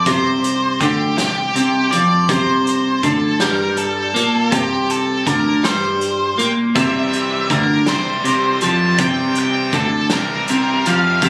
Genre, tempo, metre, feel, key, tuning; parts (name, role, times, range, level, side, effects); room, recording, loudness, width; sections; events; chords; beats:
indie rock; 54 BPM (dotted quarters); 6/8; straight; C mixolydian; A4 = 441 Hz
octave-fuzz lead guitar; melody; 0.0-11.3 s; G4 to A5; -22 LUFS; equal; distortion, digital delay
clean electric guitar; riff; 0.0-11.3 s; C3 to Bb3; -20 LUFS; equal; analog chorus
fingered electric bass; bass; 0.0-11.3 s; C2 to Bb2; -27 LUFS; equal
loose indie drum kit; drums; 0.1-11.3 s; hi-hat, kick drum, snare drum; -26 LUFS; equal
overdriven electric guitar; riff; 6.8-11.3 s; E3 to G4; -26 LUFS; equal; subtle chorus
light reverb, studio reverb; recorded on a phone in the room, club reverb, compression; -17 LUFS; mono
0.0-11.3 A section
0.0 C
| 0.07 1.18 | 2.30 3.42 | 4.53 5.64 | 6.76 7.87 | 8.99 10.10 | 11.22